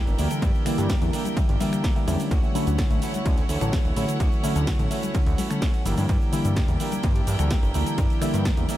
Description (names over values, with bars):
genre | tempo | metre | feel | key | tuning
filtered disco house | 127 BPM | 4/4 | straight | unclear | A4 = 441 Hz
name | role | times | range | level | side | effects
bright chamber string section | sustained chords | 0.0-8.8 s | E4 to G5 | -34 LUFS | right 1 dB | sidechain pumping
direct-recorded clean electric guitar | riff | 0.0-8.8 s | E3 to G4 | -34 LUFS | right 3 dB | sidechain pumping, analog delay
fat analog bass | bass | 0.1-8.7 s | D1 to G2 | -25 LUFS | equal | sidechain pumping
punchy analog drum machine | drums | 0.1-8.8 s | finger snaps, hi-hat, ride cymbal, shaker, snare drum | -34 LUFS | right 1 dB | overdrive, sidechain pumping on cymbals, sidechain pumping on perc, sidechain pumping on hats, analog delay
tube shaker and congas | percussion | 0.1-8.7 s | none | -36 LUFS | left 4 dB | sidechain pumping on perc, analog delay
reed electric piano | accompaniment | 0.2-8.7 s | D3 to A4 | -27 LUFS | left 1 dB | overdrive, phaser, sidechain pumping, analog delay
electronic kick drum | drums | 0.4-8.6 s | none | -24 LUFS | equal | overdrive
room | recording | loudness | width
light reverb | echo-heavy mix | -21 LUFS | side -14 dB against mid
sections
0.0-8.8 A section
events
none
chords
0.0 Gm6; 2.3 Dmaj9; 5.9 Gm6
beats
| 0.42 0.90 1.37 1.84 | 2.31 2.79 3.26 3.73 | 4.20 4.68 5.15 5.62 | 6.09 6.57 7.04 7.51 | 7.98 8.46